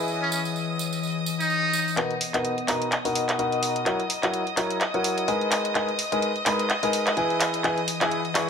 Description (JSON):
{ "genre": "piano house", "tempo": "127 BPM", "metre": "4/4", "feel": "swing 56% on 16ths", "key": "B major", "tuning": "A4 = 442 Hz", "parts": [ { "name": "warm chamber violin section", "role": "sustained chords", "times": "0.0-8.5 s", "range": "D#5 to D#6", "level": "-31 LUFS", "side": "equal", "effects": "low-pass filter" }, { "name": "clear concert grand piano", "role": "riff", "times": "0.0-8.5 s", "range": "B2 to C#6", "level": "-26 LUFS", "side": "left 1 dB", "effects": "low-pass filter, ping-pong delay" }, { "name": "warbly tape-like pad", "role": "texture", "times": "0.0-8.5 s", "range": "E3 to A#5", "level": "-33 LUFS", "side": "left 7 dB", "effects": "chorus, built-in reverb" }, { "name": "tambourine", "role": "percussion", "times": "0.1-2.0 s", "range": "none", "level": "-33 LUFS", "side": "right 6 dB", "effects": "none" }, { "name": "trumpet with metal mute", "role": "melody", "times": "0.2-2.0 s", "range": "C#4 to D#4", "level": "-28 LUFS", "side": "right 1 dB", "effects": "ping-pong delay" }, { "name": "house drum kit", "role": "drums", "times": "2.0-8.5 s", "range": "handclaps, hi-hat", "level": "-27 LUFS", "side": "equal", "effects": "high-pass filter on snare, high-pass filter on hats" } ], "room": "light reverb, studio ambience", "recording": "none", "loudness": "-22 LUFS", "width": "side -6 dB against mid", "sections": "0.0-2.0 A section; 2.0-8.5 B section", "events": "build-up 2.0-8.5; drum fill 2.0-8.5; filter sweep on grand piano 2.0-8.5", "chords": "0.0 E; 2.0 Bmaj7; 3.9 F#7; 5.5 E" }